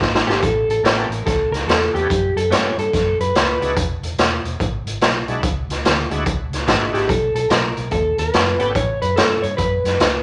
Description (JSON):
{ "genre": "electric blues shuffle", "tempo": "144 BPM", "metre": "4/4", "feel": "swing 64% on 8ths", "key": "unclear", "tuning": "A4 = 440 Hz", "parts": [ { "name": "vintage muted fingered electric bass", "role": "bass", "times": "0.0-10.2 s", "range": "E1 to G2", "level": "-28 LUFS", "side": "equal", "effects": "none" }, { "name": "raw garage drum kit", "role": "drums", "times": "0.0-10.1 s", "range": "hi-hat, kick drum, snare drum", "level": "-21 LUFS", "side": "equal", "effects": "none" }, { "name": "electric guitar through a small old amp", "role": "melody", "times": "0.3-3.7, 6.9-10.2 s", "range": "G4 to C#5", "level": "-22 LUFS", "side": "equal", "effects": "none" }, { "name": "bright tonewheel organ", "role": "accompaniment", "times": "0.3-8.7 s", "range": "G#3 to A4", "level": "-28 LUFS", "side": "equal", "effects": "slow rotary speaker, overdrive, chorus vibrato" } ], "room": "moderate large studio reverb, RT60 0.9 s", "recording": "none", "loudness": "-19 LUFS", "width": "mono", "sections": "0.0-10.2 A section", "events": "drum fill 0.0-0.4", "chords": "0.4 A9; 3.8 E9; 7.1 B9; 8.7 A9", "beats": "0.01 | 0.42 0.84 1.26 1.67 | 2.09 2.51 2.92 3.34 | 3.76 4.17 4.59 5.01 | 5.42 5.84 6.25 6.67 | 7.08 7.50 7.92 8.33 | 8.74 9.16 9.57 9.99" }